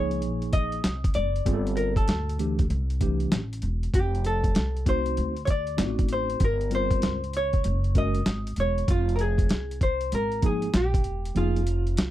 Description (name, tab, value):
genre	hip hop, jazz-hop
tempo	97 BPM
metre	4/4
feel	swing 66% on 16ths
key	unclear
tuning	A4 = 440 Hz
part	vintage hollow-body jazz guitar	melody	0.0-12.1 s	F4 to Eb5	-29 LUFS	equal	none
part	tine electric piano	accompaniment	0.0-11.6 s	E3 to Bb4	-29 LUFS	right 1 dB	medium stereo tremolo
part	upright bass	bass	0.0-12.1 s	E1 to D2	-28 LUFS	equal	none
part	dusty soul sampler-style drum kit	drums	0.1-12.1 s	hi-hat, kick drum, snare drum	-25 LUFS	equal	none
room	little or no reverb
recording	dry, close 1970s-style studio recording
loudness	-23 LUFS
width	side -13 dB against mid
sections	0.0-12.1 A section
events	kick muted 11.4-12.1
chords	0.0 Gbmaj9; 1.5 Gsus2; 2.7 C69; 3.9 F; 5.2 D7b9; 6.4 Gm7b5; 7.6 Gb9; 8.9 Fm7